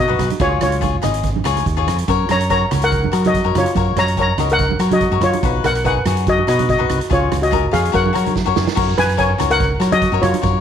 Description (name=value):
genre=calypso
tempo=144 BPM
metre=4/4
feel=swing 53% on 16ths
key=F# major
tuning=A4 = 440 Hz
part: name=steel pan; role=melody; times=0.0-10.6 s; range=E#4 to A#5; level=-18 LUFS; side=left 1 dB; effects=slapback echo
part: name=fingered electric bass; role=bass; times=0.0-10.6 s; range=G#1 to F#3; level=-20 LUFS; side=right 1 dB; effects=none
part: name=cavaquinho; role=accompaniment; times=0.1-10.6 s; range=D#4 to D#5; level=-22 LUFS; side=left 12 dB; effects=none
part: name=street-band drum kit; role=drums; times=0.2-10.5 s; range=crash cymbal, hi-hat, kick drum, rim click, snare drum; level=-23 LUFS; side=right 3 dB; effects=none
part: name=congas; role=percussion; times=0.2-10.4 s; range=none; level=-26 LUFS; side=right 11 dB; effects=none
room=light reverb, studio ambience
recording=1960s-style stereo with parts hard left and right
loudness=-14 LUFS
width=side -8 dB against mid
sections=0.0-8.8 A section; 8.8-10.6 A section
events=drum fill 8.4-8.8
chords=0.4 C#; 2.1 F#; 5.4 B; 7.1 C#; 7.9 F#